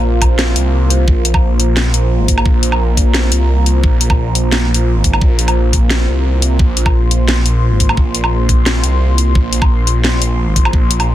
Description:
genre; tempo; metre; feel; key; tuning
half-time drum and bass; 174 BPM; 4/4; swing 53% on 16ths, half-time; unclear; A4 = 440 Hz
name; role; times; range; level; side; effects
dark analog pad; sustained chords; 0.0-11.1 s; Bb3 to C6; -20 LUFS; right 1 dB; chorus, sidechain pumping
phased detuned saw bass; bass; 0.0-11.1 s; Ab1 to C2; -14 LUFS; equal; phaser
drum and bass drum kit; drums; 0.2-11.1 s; hi-hat, snare drum, woodblock; -18 LUFS; equal; none
electronic kick drum; drums; 0.2-10.8 s; none; -13 LUFS; equal; none
room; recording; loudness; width
little or no reverb; dense, heavily limited modern master; -11 LUFS; side -13 dB against mid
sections
0.0-11.1 A section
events
none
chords
0.0 Bb5

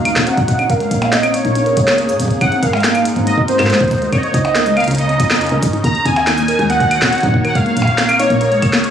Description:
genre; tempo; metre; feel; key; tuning
IDM; 140 BPM; 4/4; straight; Bb minor; A4 = 439 Hz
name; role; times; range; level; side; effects
warm velvety synth lead; melody; 0.0-8.9 s; C5 to Bb5; -17 LUFS; right 1 dB; chorus, digital delay
phased analog pad; sustained chords; 0.0-8.9 s; Db3 to Db5; -22 LUFS; equal; phaser, chorus
woody FM bass; bass; 0.0-8.9 s; Eb1 to Bb2; -21 LUFS; equal; tube saturation
warbly dusty pluck; arpeggios; 0.1-8.8 s; Ab3 to Bb4; -20 LUFS; equal; chorus, ping-pong delay
glitchy drum kit; drums; 0.1-8.9 s; cabasa, claves, hi-hat, percussion blips, snare drum; -19 LUFS; left 1 dB; ping-pong delay
electronic kick drum; drums; 0.4-8.7 s; none; -19 LUFS; equal; none
room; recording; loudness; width
moderate lush hall reverb, RT60 1.7 s, digital ambience; recorded on a phone in the room, studio ambience, compression; -12 LUFS; side -8 dB against mid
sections
0.0-8.9 A section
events
none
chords
0.0 Ebm9; 0.7 Bbm7; 2.4 Ab9; 4.1 Dbmaj9; 5.8 Ebm7; 7.6 Bbm7

